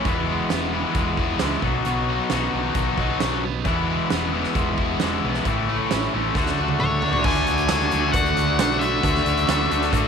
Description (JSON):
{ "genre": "classic rock", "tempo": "133 BPM", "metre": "4/4", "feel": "straight", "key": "E major", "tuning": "A4 = 440 Hz", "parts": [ { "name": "biting overdriven guitar", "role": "riff", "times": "0.0-10.1 s", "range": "A2 to F#4", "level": "-26 LUFS", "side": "right 9 dB", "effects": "none" }, { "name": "tight distorted guitar", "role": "riff", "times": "0.0-10.1 s", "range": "E2 to F#4", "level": "-24 LUFS", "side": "left 14 dB", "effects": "distortion" }, { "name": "hollow-body short-scale fingered electric bass", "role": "bass", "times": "0.1-10.1 s", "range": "E1 to A2", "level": "-28 LUFS", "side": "equal", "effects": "none" }, { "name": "huge arena drum kit", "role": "drums", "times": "0.1-10.0 s", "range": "crash cymbal, hi-hat, kick drum, snare drum, toms", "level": "-26 LUFS", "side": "right 3 dB", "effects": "none" }, { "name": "octave-fuzz lead guitar", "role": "melody", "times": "6.8-10.1 s", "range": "C#5 to G#5", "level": "-24 LUFS", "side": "left 1 dB", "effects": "distortion, slapback echo" }, { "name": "string machine, full ensemble", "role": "sustained chords", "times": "7.2-10.1 s", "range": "D4 to F#5", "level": "-31 LUFS", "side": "right 1 dB", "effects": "ensemble chorus" }, { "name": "group handclap", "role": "percussion", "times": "7.7-9.6 s", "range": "none", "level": "-37 LUFS", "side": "right 11 dB", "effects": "none" } ], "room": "light reverb, small room ambience", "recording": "1960s-style stereo with parts hard left and right", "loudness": "-19 LUFS", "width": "side -6 dB against mid", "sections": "0.0-7.3 A section; 7.3-10.1 B section", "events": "drum fill 6.4-7.3", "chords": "0.1 E; 1.6 B; 3.7 E; 5.5 A; 6.4 D" }